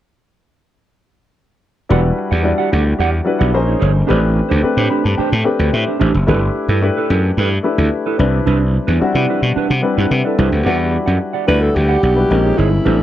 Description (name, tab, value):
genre	pop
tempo	110 BPM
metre	4/4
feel	straight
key	E minor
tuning	A4 = 440 Hz
part	warm grand piano	accompaniment	1.9-13.0 s	G3 to B5	-18 LUFS	left 3 dB	lush chorus
part	mellow electric guitar	riff	1.9-13.0 s	D4 to F#5	-20 LUFS	right 8 dB	wide subtle chorus
part	gritty slap bass	bass	1.9-13.0 s	E1 to C3	-15 LUFS	equal	overdrive
part	breathy alto saxophone	melody	11.5-13.0 s	E4 to B4	-17 LUFS	equal	none
room	light reverb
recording	dry, close 1970s-style studio recording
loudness	-13 LUFS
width	side -12 dB against mid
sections	1.9-10.7 A section; 10.7-13.0 B section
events	grand piano fill 4.6-6.3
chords	1.9 Em9; 3.5 A#m11; 4.1 Am11; 6.3 G69; 8.2 Cmaj9; 10.7 Em9; 12.3 A#m11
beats	| 1.90 2.45 3.00 3.54 | 4.09 4.64 5.18 5.73 | 6.28 6.82 7.37 7.92 | 8.47 9.01 9.56 10.11 | 10.66 11.20 11.75 12.30 | 12.85